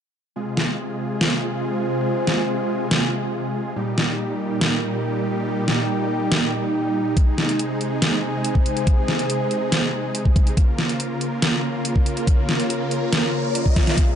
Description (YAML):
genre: heavy wobble dubstep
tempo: 141 BPM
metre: 4/4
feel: half-time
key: F minor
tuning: A4 = 440 Hz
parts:
  - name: supersaw chords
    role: sustained chords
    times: 0.4-14.2 s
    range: Bb2 to Bb4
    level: -25 LUFS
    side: equal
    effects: sidechain pumping
  - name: warbly tape-like pad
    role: texture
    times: 0.4-14.2 s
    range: Eb4 to Bb5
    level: -27 LUFS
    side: right 1 dB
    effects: chorus, built-in reverb, sidechain pumping
  - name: dubstep drum kit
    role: drums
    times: 0.6-14.1 s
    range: hi-hat, snare drum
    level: -22 LUFS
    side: equal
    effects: overdrive
  - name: electronic kick drum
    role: drums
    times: 7.2-14.1 s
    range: none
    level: -17 LUFS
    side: equal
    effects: overdrive
  - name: riser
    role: sound effects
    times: 12.1-14.2 s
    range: none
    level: -32 LUFS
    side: left 4 dB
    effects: none
room: moderate lush hall reverb, RT60 2.3 s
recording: dark, warm production, nothing above 10.9 kHz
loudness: -19 LUFS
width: side -8 dB against mid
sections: 0.4-14.0 A section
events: riser 12.1-14.0, 14.0; drum fill 13.8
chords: 0.4 Fm; 3.8 Eb; 7.2 Ab; 10.6 Bbm